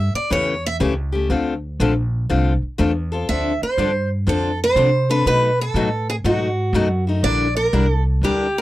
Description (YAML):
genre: acoustic string swing (jazz manouche)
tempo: 121 BPM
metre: 4/4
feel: swing 66% on 8ths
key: unclear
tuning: A4 = 440 Hz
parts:
  - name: picked steel-string acoustic guitar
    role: melody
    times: 0.0-8.6 s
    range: F#4 to E5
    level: -20 LUFS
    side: right 2 dB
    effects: none
  - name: upright bass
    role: bass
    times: 0.0-8.6 s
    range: Bb1 to C3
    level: -21 LUFS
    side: equal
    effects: none
  - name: picked steel-string acoustic guitar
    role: accompaniment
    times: 0.3-8.5 s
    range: B2 to Bb4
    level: -22 LUFS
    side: left 4 dB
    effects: none
room: little or no reverb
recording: dry, close 1970s-style studio recording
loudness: -17 LUFS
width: side -16 dB against mid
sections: 0.0-3.3 A section; 3.3-8.6 B section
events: steel-string acoustic guitar solo 0.0-3.3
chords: 0.0 A7; 1.3 Dm7; 5.3 B7; 7.2 Em7b5/Bb